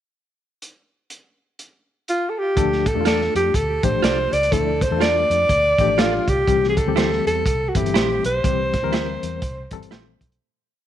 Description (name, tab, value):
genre	uptempo 1960s-style soul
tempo	123 BPM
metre	4/4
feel	swing 60% on 8ths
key	D minor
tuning	A4 = 441 Hz
part	crunchy breakbeat drum kit	drums	0.6-10.4 s	hi-hat, kick drum, snare drum	-24 LUFS	right 1 dB	none
part	breathy alto saxophone	melody	2.1-9.9 s	F4 to D5	-20 LUFS	equal	tape echo
part	barky reed electric piano	accompaniment	2.6-10.2 s	Eb3 to Bb4	-26 LUFS	left 12 dB	overdrive, fast tremolo
part	vintage muted fingered electric bass	bass	2.6-10.4 s	G1 to F2	-27 LUFS	right 1 dB	none
part	direct-recorded clean electric guitar	stabs	3.1-10.1 s	E4 to D5	-27 LUFS	right 11 dB	spring reverb
room	light reverb, small room ambience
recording	1960s-style stereo with parts hard left and right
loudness	-17 LUFS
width	side -10 dB against mid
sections	0.6-2.6 pickup bar; 2.6-10.4 verse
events	fade-out 8.4-10.4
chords	0.6 N.C.; 2.6 Dm; 6.5 C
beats	| 0.62 1.11 1.59 2.08 | 2.57 3.06 3.54 4.03 | 4.52 5.01 5.50 5.99 | 6.48 6.97 7.46 7.95 | 8.44 8.93 9.42 9.91